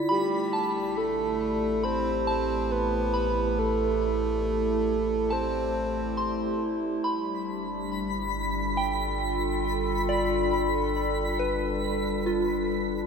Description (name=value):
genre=ambient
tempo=69 BPM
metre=4/4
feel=straight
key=A minor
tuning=A4 = 441 Hz
part: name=warbly tape-like pad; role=sustained chords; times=0.0-13.1 s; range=G3 to D5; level=-29 LUFS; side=equal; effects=chorus, built-in reverb
part: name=soft synth bell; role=arpeggios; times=0.0-13.1 s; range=F4 to C6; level=-32 LUFS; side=equal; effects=chorus, ping-pong delay
part: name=round analog bass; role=bass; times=0.0-13.1 s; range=G1 to A1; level=-34 LUFS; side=equal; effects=none
part: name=twinkling granular texture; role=texture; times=0.0-0.1, 7.8-13.1 s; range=B5 to B6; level=-34 LUFS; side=left 1 dB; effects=built-in reverb
part: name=breathy flute-like synth lead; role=melody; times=0.1-6.6 s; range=G4 to C5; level=-30 LUFS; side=right 1 dB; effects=chorus, ping-pong delay
room=wet cathedral reverb, RT60 6.2 s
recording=none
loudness=-25 LUFS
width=side -6 dB against mid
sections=0.1-13.1 A section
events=none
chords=0.1 Am7; 7.0 G7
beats=| 0.09 0.96 1.83 2.70 | 3.57 4.44 5.31 6.18 | 7.05 7.92 8.79 9.65 | 10.52 11.39 12.26